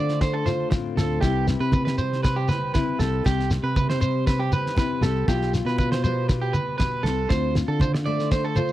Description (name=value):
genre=highlife guitar band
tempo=118 BPM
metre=4/4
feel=straight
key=C major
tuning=A4 = 440 Hz
part: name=picked steel-string acoustic guitar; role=accompaniment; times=0.0-8.7 s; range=A2 to C5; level=-29 LUFS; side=left 7 dB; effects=none
part: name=electric guitar at the edge of break-up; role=arpeggios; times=0.0-8.7 s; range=G4 to D5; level=-27 LUFS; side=right 4 dB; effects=tape echo
part: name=fingered electric bass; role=bass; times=0.0-8.5 s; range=B1 to D3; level=-25 LUFS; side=equal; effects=none
part: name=damped 70s drum kit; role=drums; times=0.1-8.4 s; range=kick drum, snare drum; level=-24 LUFS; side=equal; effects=none
part: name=shekere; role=percussion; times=0.1-8.7 s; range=none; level=-27 LUFS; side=left 1 dB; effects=none
part: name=congas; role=percussion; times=0.2-8.7 s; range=none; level=-29 LUFS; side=right 2 dB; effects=none
room=little or no reverb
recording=dry, close 1970s-style studio recording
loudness=-21 LUFS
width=side -14 dB against mid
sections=0.0-8.7 A section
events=none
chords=0.0 Dm7; 1.2 Cmaj7; 5.3 G7/B; 7.3 Dm7